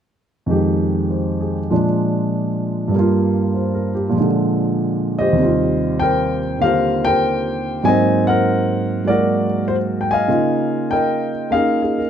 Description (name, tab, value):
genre	jazz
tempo	98 BPM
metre	4/4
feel	swing 68% on 8ths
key	Eb major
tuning	A4 = 440 Hz
part	warm grand piano	solo	0.5-12.1 s	Eb2 to Ab5	-16 LUFS	equal	none
room	moderate studio reverb, RT60 0.7 s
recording	dark, warm production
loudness	-16 LUFS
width	side -8 dB against mid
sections	0.5-5.4 A section; 5.4-12.1 B section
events	none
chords	0.5 Fm9; 1.7 Bb7; 2.9 Gm7; 4.2 Bb7; 5.4 Eb69; 7.8 Ab9; 10.3 Db69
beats	| 0.47 1.09 1.70 2.32 | 2.93 3.54 4.16 4.77 | 5.38 6.00 6.61 7.22 | 7.83 8.44 9.06 9.67 | 10.28 10.89 11.51